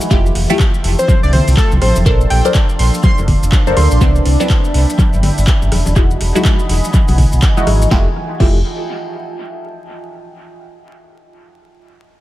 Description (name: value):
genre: deep house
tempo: 123 BPM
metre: 4/4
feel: swing 60% on 16ths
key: unclear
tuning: A4 = 442 Hz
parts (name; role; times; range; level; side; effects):
- dark analog pad; sustained chords; 0.0-8.1 s; D5 to C6; -27 LUFS; left 1 dB; chorus, sidechain pumping
- filtered dub chord stab; stabs; 0.0-8.6 s; E3 to C5; -20 LUFS; equal; phaser, sidechain pumping, analog delay
- maracas; percussion; 0.0-7.9 s; none; -29 LUFS; left 2 dB; none
- deep dark ambient pad; texture; 0.0-9.8 s; E3 to E6; -25 LUFS; equal; chorus, built-in reverb, sidechain pumping
- sub bass with octave; bass; 0.1-8.6 s; E1 to D2; -14 LUFS; equal; sidechain pumping
- electronic kick drum; drums; 0.1-8.5 s; none; -13 LUFS; equal; overdrive, studio reverb
- deep house drum kit; drums; 0.4-8.5 s; crash cymbal, handclaps, hi-hat, rim click, snare drum; -24 LUFS; equal; overdrive, studio reverb, dub echo
- congas; percussion; 0.5-7.8 s; none; -22 LUFS; left 1 dB; sidechain pumping on perc, dub echo
- plucky unison lead; melody; 1.0-4.1 s; A4 to C6; -20 LUFS; equal; vintage 12-bit sampler grit, dub echo
room: digital ambience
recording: echo-heavy mix, vinyl crackle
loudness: -10 LUFS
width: side -15 dB against mid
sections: 0.0-7.9 A section; 7.9-9.9 B section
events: drop 0.0-7.9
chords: 0.1 Fmaj9; 2.1 Bbmaj9; 4.0 Cmaj9; 5.7 Emaj9; 7.9 Fmaj9